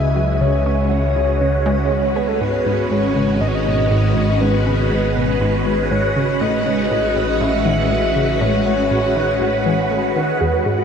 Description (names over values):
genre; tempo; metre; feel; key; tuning
ambient, sequencer-driven space music; 120 BPM; 4/4; straight; unclear; A4 = 440 Hz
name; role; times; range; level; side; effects
soft octave-layered synth lead; melody; 0.0-10.1 s; A4 to E5; -21 LUFS; left 1 dB; chorus, shimmer reverb, ping-pong delay
phased string machine; sustained chords; 0.0-10.8 s; G#3 to G#5; -20 LUFS; equal; ensemble chorus, phaser, shimmer reverb
analog pluck; riff; 0.0-10.8 s; E2 to G#4; -23 LUFS; equal; chorus, ping-pong delay
analog drone; bass; 0.0-10.8 s; G#1 to E2; -22 LUFS; equal; chorus
bubbling stepped-filter texture; texture; 0.0-10.8 s; D#3 to D#6; -37 LUFS; right 1 dB; none
warbly dusty pluck; arpeggios; 10.4-10.8 s; F#4 to B4; -24 LUFS; right 2 dB; chorus, auto-pan, cassette tape, ping-pong delay
room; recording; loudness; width
wet huge ambient reverb, RT60 8.5 s; dreamy mix soaked in reverb; -15 LUFS; side -7 dB against mid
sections
0.0-10.8 A section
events
none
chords
0.0 C#madd9; 2.4 G#m7; 6.4 Asus2